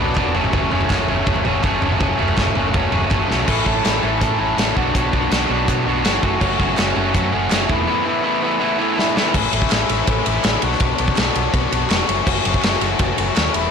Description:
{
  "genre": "indie rock",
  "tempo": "164 BPM",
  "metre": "4/4",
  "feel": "straight",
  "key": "unclear",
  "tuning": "A4 = 440 Hz",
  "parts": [
    { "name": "biting overdriven guitar", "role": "riff", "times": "0.0-13.7 s", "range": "F#2 to F#4", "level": "-21 LUFS", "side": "left 9 dB", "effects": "none" },
    { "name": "overdriven electric guitar", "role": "riff", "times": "0.0-9.3 s", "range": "F#2 to A4", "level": "-21 LUFS", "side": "right 8 dB", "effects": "wide subtle chorus, digital delay" },
    { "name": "hollow-body short-scale fingered electric bass", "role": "bass", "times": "0.0-13.7 s", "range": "E1 to B2", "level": "-24 LUFS", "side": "equal", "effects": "none" },
    { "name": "big rock drum kit", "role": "drums", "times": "0.2-13.6 s", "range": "crash cymbal, hi-hat, kick drum, ride cymbal, snare drum, toms", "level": "-20 LUFS", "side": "equal", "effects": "soft clipping on kick, soft clipping on snare" },
    { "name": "group handclap", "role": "percussion", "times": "0.2-3.2, 6.8-13.4 s", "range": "none", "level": "-32 LUFS", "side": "right 7 dB", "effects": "none" },
    { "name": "soft string machine", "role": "sustained chords", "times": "9.3-13.7 s", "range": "F#4 to B5", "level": "-30 LUFS", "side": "right 1 dB", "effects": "phaser, ensemble chorus" }
  ],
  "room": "light reverb",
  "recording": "blown-out, overdriven recording, overdrive",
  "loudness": "-16 LUFS",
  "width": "side -6 dB against mid",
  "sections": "0.0-3.5 A section; 3.5-9.3 B section; 9.3-13.7 C section",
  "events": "drum fill 3.3, 9.0-9.3",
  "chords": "0.4 F#m; 3.5 A; 4.8 Bm; 6.2 F#m; 7.7 Esus4; 9.3 Aadd9; 10.6 Bmadd9; 12.1 F#m7"
}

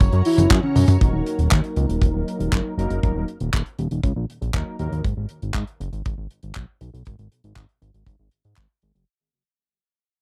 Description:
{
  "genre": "italo disco",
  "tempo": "119 BPM",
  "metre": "4/4",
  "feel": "straight",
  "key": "unclear",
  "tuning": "A4 = 441 Hz",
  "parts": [
    { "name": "string machine, full ensemble", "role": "sustained chords", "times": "0.0-1.0 s", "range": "F#4 to C#6", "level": "-36 LUFS", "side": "equal", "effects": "ensemble chorus, vintage 12-bit sampler grit" },
    { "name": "fat analog bass", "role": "bass", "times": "0.0-9.0 s", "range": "D#1 to G#2", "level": "-25 LUFS", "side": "equal", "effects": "tube saturation" },
    { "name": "damped 70s drum kit", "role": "drums", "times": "0.0-9.1 s", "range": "handclaps, hi-hat, tambourine, toms", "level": "-25 LUFS", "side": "equal", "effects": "none" },
    { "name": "kick drum", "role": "drums", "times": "0.0-8.7 s", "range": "none", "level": "-22 LUFS", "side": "equal", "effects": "none" },
    { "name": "soft octave-layered synth lead", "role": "melody", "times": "0.3-0.9 s", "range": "C#4 to E4", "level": "-23 LUFS", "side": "equal", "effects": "chorus, phaser, tape echo" },
    { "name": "analog synth brass", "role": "stabs", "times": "1.0-5.0 s", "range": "G#2 to A#4", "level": "-30 LUFS", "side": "equal", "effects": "chorus" }
  ],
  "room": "little or no reverb",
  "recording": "dry, close 1970s-style studio recording",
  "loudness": "-22 LUFS",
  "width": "mono",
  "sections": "0.0-1.0 A section; 1.0-9.1 B section",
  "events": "drum fill 0.6-1.0; fade-out 1.0-9.1",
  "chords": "0.0 F#; 1.0 D#m; 5.0 G#m"
}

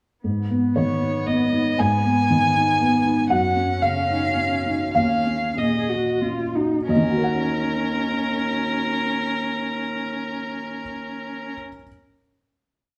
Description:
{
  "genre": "neoclassical piano and strings",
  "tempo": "88-121 BPM",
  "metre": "3/4",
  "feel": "rubato",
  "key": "Eb minor",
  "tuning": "A4 = 439 Hz",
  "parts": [
    { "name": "muted cello", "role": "second line", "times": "0.2-11.5 s", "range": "Cb4 to Ab4", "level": "-32 LUFS", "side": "equal", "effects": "none" },
    { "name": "felt-muted upright piano", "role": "accompaniment", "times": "0.2-11.9 s", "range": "Eb2 to Ab5", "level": "-24 LUFS", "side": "equal", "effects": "none" },
    { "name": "muted violin", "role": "melody", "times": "0.8-11.5 s", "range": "Bb4 to Ab5", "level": "-27 LUFS", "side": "equal", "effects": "none" }
  ],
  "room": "wet studio reverb, RT60 0.8 s",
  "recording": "band playing live in one room",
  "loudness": "-22 LUFS",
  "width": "mono",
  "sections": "0.2-6.9 theme; 6.9-10.8 final chord",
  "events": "slowing down 2.6-6.9",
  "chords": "0.2 Abm; 3.3 Ebm7/Gb; 5.0 Ebm7"
}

